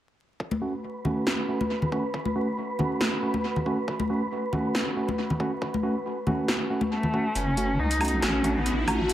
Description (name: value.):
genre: deep dubstep.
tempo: 138 BPM.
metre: 4/4.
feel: swing 54% on 16ths, half-time.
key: F# dorian.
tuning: A4 = 441 Hz.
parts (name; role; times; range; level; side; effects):
electronic kick drum; drums; 0.4-7.2 s; none; -36 LUFS; left 1 dB; overdrive, high-pass filter on kick, high-pass filter on room.
wind-like tuned noise texture; texture; 0.7-7.4 s; B4; -34 LUFS; right 2 dB; built-in reverb.
congas; percussion; 0.5-7.1 s; none; -30 LUFS; left 2 dB; dub echo.
tine electric piano; stabs; 0.6-9.0 s; A3 to F#4; -29 LUFS; right 2 dB; vintage 12-bit sampler grit, low-pass filter, dub echo.
deep house drum kit; drums; 1.3-9.1 s; hi-hat, snare drum, woodblock; -29 LUFS; equal; overdrive, high-pass filter on snare, high-pass filter on hats, high-pass filter on perc, high-pass filter on room, tape echo.
warm cello; melody; 6.9-9.1 s; A3 to D#4; -28 LUFS; left 1 dB; low-pass filter, dub echo.
deep soft wobble bass; bass; 7.4-9.1 s; F#1 to C#2; -28 LUFS; equal; chorus.
riser; sound effects; 7.8-9.1 s; none; -31 LUFS; left 1 dB; none.
room: wet spring reverb, RT60 1.9 s, digital ambience.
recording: echo-heavy mix, vinyl crackle.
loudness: -24 LUFS.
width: side -12 dB against mid.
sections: 0.4-7.4 A section; 7.4-9.1 B section.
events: build-up 7.4-9.1; filter sweep on tine electric piano 7.4-9.1; riser 7.8-9.1.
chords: 0.4 F#m.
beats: | 0.40 0.83 1.27 1.70 | 2.14 2.57 3.01 3.44 | 3.88 4.31 4.75 5.18 | 5.62 6.05 6.49 6.92 | 7.36 7.79 8.23 8.66 | 9.10.